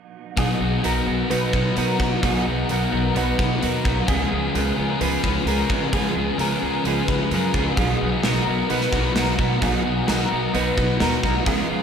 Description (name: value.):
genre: rock, shoegaze and dream pop.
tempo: 130 BPM.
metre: 4/4.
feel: straight.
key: B lydian.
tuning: A4 = 440 Hz.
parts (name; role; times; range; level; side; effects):
fingerpicked twelve-string acoustic guitar; arpeggios; 0.4-11.8 s; G#4 to B4; -28 LUFS; left 3 dB; ensemble chorus, analog delay.
overdriven semi-hollow guitar; riff; 0.4-11.8 s; B2 to G#4; -25 LUFS; right 7 dB; reverse reverb.
thick fuzz guitar; riff; 0.4-11.8 s; B2 to C#4; -24 LUFS; left 6 dB; distortion, analog chorus.
upright bass; bass; 0.4-11.8 s; B1 to C#3; -26 LUFS; equal; none.
gated 80s drum kit; drums; 0.4-11.6 s; hi-hat, kick drum, snare drum; -26 LUFS; equal; none.
room: wet cathedral reverb, RT60 5.2 s.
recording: dreamy mix soaked in reverb.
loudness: -19 LUFS.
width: side -7 dB against mid.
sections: 0.4-11.8 A section.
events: none.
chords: 0.4 Bmaj7; 4.1 C#7; 7.8 Bmaj7.